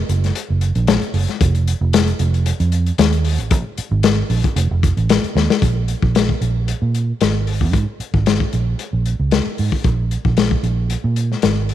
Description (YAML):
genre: straight-eighth soul blues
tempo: 114 BPM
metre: 4/4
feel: straight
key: Bb minor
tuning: A4 = 440 Hz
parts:
  - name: vintage muted fingered electric bass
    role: bass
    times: 0.1-11.7 s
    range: F1 to Bb2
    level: -17 LUFS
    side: right 2 dB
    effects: tube saturation
  - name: crunchy breakbeat drum kit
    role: drums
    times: 0.1-11.7 s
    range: hi-hat, kick drum, snare drum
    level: -18 LUFS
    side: left 4 dB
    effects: none
room: light reverb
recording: 1960s-style stereo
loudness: -15 LUFS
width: side -12 dB against mid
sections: 0.0-5.6 A section; 5.6-11.7 B section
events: drum fill 5.4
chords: none